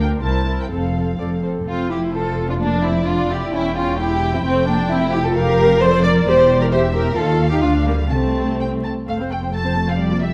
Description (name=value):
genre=quick classical-period movement for string orchestra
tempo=130 BPM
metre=2/4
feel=rubato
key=F major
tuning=A4 = 441 Hz
part: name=muted studio violin section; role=melody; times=0.0-10.3 s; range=C5 to A5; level=-30 LUFS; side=equal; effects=none
part: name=muted chamber violin section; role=second line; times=0.0-10.3 s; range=Bb3 to A5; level=-22 LUFS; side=equal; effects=none
part: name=muted chamber viola section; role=accompaniment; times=0.0-10.3 s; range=G3 to C5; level=-26 LUFS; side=equal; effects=none
part: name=muted chamber cello section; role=bass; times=0.0-10.3 s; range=C2 to Eb3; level=-27 LUFS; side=equal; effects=none
part: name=muted chamber double bass section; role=bass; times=0.0-10.3 s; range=E1 to Eb2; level=-24 LUFS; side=equal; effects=none
room=moderate scoring stage reverb, RT60 1.6 s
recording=close, detailed microphones, vinyl crackle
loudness=-18 LUFS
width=mono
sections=0.0-1.7 A section; 1.7-9.1 B section; 9.1-10.3 B section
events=none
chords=0.2 C7; 0.7 F; 1.7 F5; 3.5 Em6; 4.5 Gm7/F; 6.3 C9/E; 7.2 F7/Eb; 7.6 Bb/D (rootless); 8.1 Am/C; 9.1 F